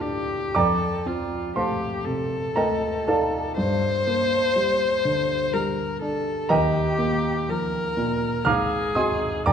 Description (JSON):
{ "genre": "classical, impressionist duo for viola and grand piano", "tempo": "60 BPM", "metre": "3/4", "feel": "rubato", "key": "G minor", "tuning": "A4 = 443 Hz", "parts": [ { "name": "rich viola", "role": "melody", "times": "0.0-9.5 s", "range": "F4 to C5", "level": "-25 LUFS", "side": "left 2 dB", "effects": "none" }, { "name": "warm grand piano", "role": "accompaniment", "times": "0.0-9.5 s", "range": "F1 to F6", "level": "-24 LUFS", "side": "right 1 dB", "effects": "none" } ], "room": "wet recital hall reverb, RT60 1.6 s", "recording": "minimal, uncompressed stereo recording, lossy compression artefacts", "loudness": "-21 LUFS", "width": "side -7 dB against mid", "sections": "0.0-9.5 A section", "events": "none", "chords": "0.0 Dm7; 0.6 F9; 3.6 Gmadd9; 6.5 Ebadd9; 8.5 Ab9" }